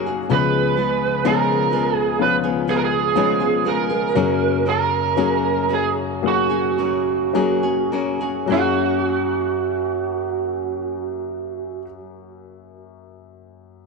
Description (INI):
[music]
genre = pop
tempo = 51-64 BPM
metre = 4/4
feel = straight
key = F# major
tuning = A4 = 443 Hz
[part]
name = warm grand piano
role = accompaniment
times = 0.0-13.9 s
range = F#1 to G#4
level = -23 LUFS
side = left 10 dB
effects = none
[part]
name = nylon-string guitar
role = arpeggios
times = 0.0-12.1 s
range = C#3 to G#4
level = -25 LUFS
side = left 1 dB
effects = none
[part]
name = lead guitar through a small cranked amp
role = melody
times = 0.3-11.8 s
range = F#4 to B4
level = -21 LUFS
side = right 10 dB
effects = overdrive
[sound]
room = moderate plate reverb, RT60 2.7 s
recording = 1960s-style stereo with parts hard left and right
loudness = -18 LUFS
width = side -3 dB against mid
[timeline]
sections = 0.0-8.5 A section; 8.5-13.1 B section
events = slowing down 0.3-8.5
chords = 0.3 C#7; 4.2 F#add9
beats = | 0.31 1.25 2.21 3.17 | 4.16 5.18 6.24 7.35 | 8.50 9.66 10.82 11.96